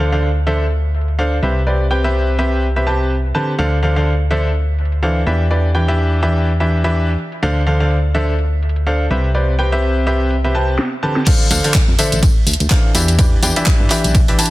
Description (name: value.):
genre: piano house.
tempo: 125 BPM.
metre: 4/4.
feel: swing 57% on 16ths.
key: D dorian.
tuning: A4 = 440 Hz.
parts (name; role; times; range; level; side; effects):
clear grand piano; riff; 0.0-14.5 s; C3 to A5; -18 LUFS; equal; sidechain pumping, low-pass filter, dub echo.
solid FM bass; bass; 0.0-14.3 s; A1 to G2; -17 LUFS; equal; tube saturation, sidechain pumping.
garage drum kit; drums; 0.1-14.5 s; crash cymbal, handclaps, hi-hat, ride cymbal, snare drum, tambourine; -19 LUFS; equal; overdrive, low-pass filter on hats, low-pass filter on snare, low-pass filter on cymbals, low-pass filter on perc.
electronic kick drum; drums; 11.3-14.3 s; none; -14 LUFS; equal; none.
room: digital ambience.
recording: dense, heavily limited modern master.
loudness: -13 LUFS.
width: side -17 dB against mid.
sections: 0.0-11.3 A section; 11.3-14.5 B section.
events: drum fill 10.8-11.3; drop 11.3-14.5.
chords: 0.0 Dm7; 1.4 Cmaj7; 3.6 Dm7; 5.3 Em7; 7.4 Dm7; 9.1 Cmaj7; 11.3 Dm7; 12.9 Em7.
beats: 0.23 0.71 1.19 | 1.67 2.15 2.63 3.11 | 3.59 4.07 4.55 5.03 | 5.51 5.99 6.47 6.95 | 7.43 7.91 8.39 8.87 | 9.35 9.83 10.31 10.79 | 11.27 11.75 12.23 12.71 | 13.19 13.67 14.15.